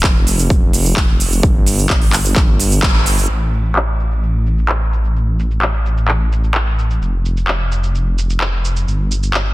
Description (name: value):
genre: EDM, festival progressive house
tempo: 129 BPM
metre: 4/4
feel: straight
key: unclear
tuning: A4 = 441 Hz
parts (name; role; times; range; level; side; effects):
- detuned saw bass; bass; 0.0-9.5 s; F1 to A1; -16 LUFS; equal; sidechain pumping
- big-room dance drum kit; drums; 0.0-9.4 s; crash cymbal, handclaps, hi-hat, shaker; -19 LUFS; equal; low-pass filter on hats, low-pass filter on perc, low-pass filter on snare, low-pass filter on cymbals
- electronic kick drum; drums; 0.0-2.9 s; none; -13 LUFS; equal; none
room: little or no reverb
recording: dense, heavily limited modern master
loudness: -13 LUFS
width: side -18 dB against mid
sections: 0.0-3.3 A section; 3.3-9.5 B section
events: drop 0.0-3.3; band accent 2.8; filter sweep on drum 3.3-9.5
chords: none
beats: 0.04 0.50 0.97 | 1.43 1.90 2.36 2.83 | 3.29 3.76 4.22 4.69 | 5.15 5.62 6.08 6.55 | 7.01 7.48 7.95 8.41 | 8.88 9.34